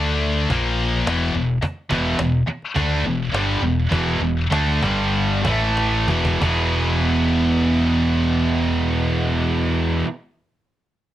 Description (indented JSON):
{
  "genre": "hard rock",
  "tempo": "90-107 BPM",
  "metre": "4/4",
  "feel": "straight",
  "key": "E mixolydian",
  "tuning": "A4 = 440 Hz",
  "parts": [
    { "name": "cranked stack guitar", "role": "riff", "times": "0.0-10.1 s", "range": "E2 to D4", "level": "-24 LUFS", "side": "left 5 dB", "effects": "overdrive, cassette tape" },
    { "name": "high-gain distorted guitar", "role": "riff", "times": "0.0-10.1 s", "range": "E2 to G#4", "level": "-24 LUFS", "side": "equal", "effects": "distortion, cassette tape" },
    { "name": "fingered electric bass", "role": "bass", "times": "0.0-10.0 s", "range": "E1 to D2", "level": "-23 LUFS", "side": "equal", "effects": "none" },
    { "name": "cajon", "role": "drums", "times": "0.2-6.6 s", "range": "none", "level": "-25 LUFS", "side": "equal", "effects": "cassette tape" },
    { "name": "distorted electric guitar", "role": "riff", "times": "1.6-10.1 s", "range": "E2 to D4", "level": "-23 LUFS", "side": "right 5 dB", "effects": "distortion, cassette tape" }
  ],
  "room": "light reverb",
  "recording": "home recording on cassette",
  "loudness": "-18 LUFS",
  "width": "side -13 dB against mid",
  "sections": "0.0-6.4 A section; 6.4-9.1 B section",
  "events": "slowing down 1.6-6.4; drum fill 5.8-6.4",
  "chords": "0.5 A#5; 1.1 E5; 4.8 G5; 5.4 A5; 6.1 E5; 6.4 E"
}